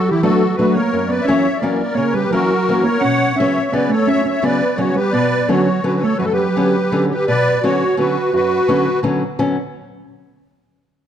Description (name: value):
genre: musette waltz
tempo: 171 BPM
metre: 3/4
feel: straight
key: B minor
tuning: A4 = 441 Hz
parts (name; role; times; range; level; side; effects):
- musette accordion; melody; 0.0-9.0 s; E4 to F#5; -17 LUFS; equal; none
- hollow-body jazz guitar; second line; 0.0-9.0 s; E3 to B4; -20 LUFS; right 3 dB; none
- fingerpicked old ladder-braced acoustic guitar; accompaniment; 0.0-9.6 s; F#2 to D4; -20 LUFS; left 2 dB; none
room: moderate recital hall reverb, RT60 1.5 s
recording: dark, warm production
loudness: -14 LUFS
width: side -9 dB against mid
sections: 0.0-7.3 A section; 7.3-9.4 B section; 9.4-10.4 C section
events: none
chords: 0.0 Bm7; 0.9 F#7; 3.0 Bsus2; 5.1 Bmadd9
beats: 0.23 0.57 | 0.92 1.27 1.62 | 1.97 2.32 2.67 | 3.03 3.38 3.74 | 4.09 4.44 4.78 | 5.13 5.49 5.84 | 6.19 6.55 6.91 | 7.27 7.63 7.98 | 8.33 8.68 9.03 | 9.38